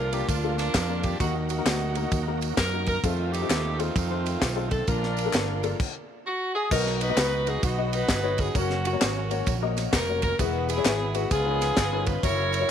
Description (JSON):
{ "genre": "uptempo gospel", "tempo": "131 BPM", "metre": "4/4", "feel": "swing 65% on 8ths", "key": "Bb major, B major from 6.7 s", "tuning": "A4 = 439 Hz", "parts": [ { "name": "warm saxophone section", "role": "melody", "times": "0.0-12.7 s", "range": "A3 to C#5", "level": "-28 LUFS", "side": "right 1 dB", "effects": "none" }, { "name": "dark baby grand piano", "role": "accompaniment", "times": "0.0-12.7 s", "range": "Bb2 to F#5", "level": "-32 LUFS", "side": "left 13 dB", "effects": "none" }, { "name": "bright tonewheel organ", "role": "sustained chords", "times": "0.0-12.7 s", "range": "D3 to A#4", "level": "-37 LUFS", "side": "right 12 dB", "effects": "slow rotary speaker, overdrive, chorus vibrato" }, { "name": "fretless electric bass", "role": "bass", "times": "0.0-12.6 s", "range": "E1 to Gb2", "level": "-29 LUFS", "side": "right 1 dB", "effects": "none" }, { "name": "tight funk drum kit", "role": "drums", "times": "0.1-12.6 s", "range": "crash cymbal, kick drum, ride cymbal, snare drum", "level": "-29 LUFS", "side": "equal", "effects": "none" }, { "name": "tambourine and handclaps", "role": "percussion", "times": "0.1-12.6 s", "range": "none", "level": "-36 LUFS", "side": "left 3 dB", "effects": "none" } ], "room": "light reverb, small room ambience", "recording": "1960s-style stereo with parts hard left and right", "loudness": "-23 LUFS", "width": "side -8 dB against mid", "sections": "0.0-6.7 A section; 6.7-12.7 A section", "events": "stop 5.8-6.7", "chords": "0.0 Bb; 1.2 Ebm; 3.0 F7; 4.9 Bb; 5.8 N.C.; 6.7 B; 8.6 F#; 10.4 E; 11.3 C#13", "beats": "0.29 0.75 | 1.20 1.66 2.12 2.58 | 3.04 3.50 3.96 4.42 | 4.88 5.33 5.79 6.25 | 6.71 7.17 7.63 8.09 | 8.55 9.01 9.47 9.93 | 10.39 10.85 11.31 11.77 | 12.23 12.69" }